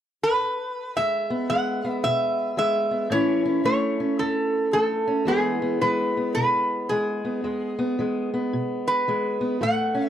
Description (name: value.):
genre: acoustic country blues, solo or duo.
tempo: 111 BPM.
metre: 4/4.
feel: swing 62% on 8ths.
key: E major.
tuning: A4 = 444 Hz.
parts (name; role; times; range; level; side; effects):
metal-body resonator slide guitar; melody; 0.2-10.1 s; G#4 to F#5; -24 LUFS; right 1 dB; none.
fingerpicked steel-string acoustic guitar; accompaniment; 1.0-10.1 s; E2 to E4; -24 LUFS; left 1 dB; none.
room: small room ambience.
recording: dry, close 1970s-style studio recording.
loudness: -22 LUFS.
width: side -10 dB against mid.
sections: 0.9-10.1 A section.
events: none.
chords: 0.0 N.C.; 0.9 E; 3.1 A; 5.3 E.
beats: 0.41 | 0.95 1.49 2.03 2.57 | 3.12 3.66 4.20 4.74 | 5.28 5.82 6.36 6.90 | 7.44 7.98 8.52 9.06 | 9.60.